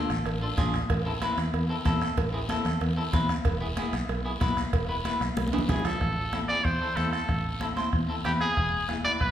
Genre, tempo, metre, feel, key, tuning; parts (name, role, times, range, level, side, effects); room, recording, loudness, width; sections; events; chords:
latin, cumbia; 188 BPM; 4/4; straight; A harmonic minor; A4 = 439 Hz
clean electric guitar; accompaniment; 0.0-9.2 s; B3 to C5; -32 LUFS; left 1 dB
fingered electric bass; bass; 0.1-9.3 s; E1 to E2; -31 LUFS; equal
bombo; percussion; 0.1-9.3 s; -31 LUFS; equal
guiro; percussion; 0.1-9.3 s; -42 LUFS; left 2 dB
congas; percussion; 0.3-9.2 s; -34 LUFS; left 3 dB
cowbell and timbales; percussion; 0.3-5.9 s; -37 LUFS; right 5 dB
clear trumpet; melody; 5.7-9.3 s; G4 to D5; -28 LUFS; equal
wet recital hall reverb, RT60 1.3 s; recorded in a church or concert hall; -25 LUFS; side -10 dB against mid
0.0-6.0 A section; 6.0-9.3 B section
drum fill 5.4-6.0
0.0 Dm; 0.9 Am; 3.5 E; 6.0 Am; 8.6 E